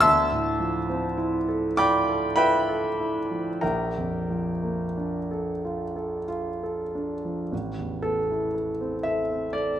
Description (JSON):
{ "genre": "classical, impressionist solo piano", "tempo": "44-61 BPM", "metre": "3/4", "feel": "rubato", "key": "A minor", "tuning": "A4 = 435 Hz", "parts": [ { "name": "warm grand piano", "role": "solo", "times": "0.0-9.8 s", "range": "A1 to E6", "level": "-23 LUFS", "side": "equal", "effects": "none" } ], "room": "wet recital hall reverb, RT60 1.5 s", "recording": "none", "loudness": "-24 LUFS", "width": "side -10 dB against mid", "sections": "0.0-7.5 A section; 7.5-9.8 B section", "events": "none", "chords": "0.0 Dm9; 3.6 Bbmaj7; 7.5 Amadd9" }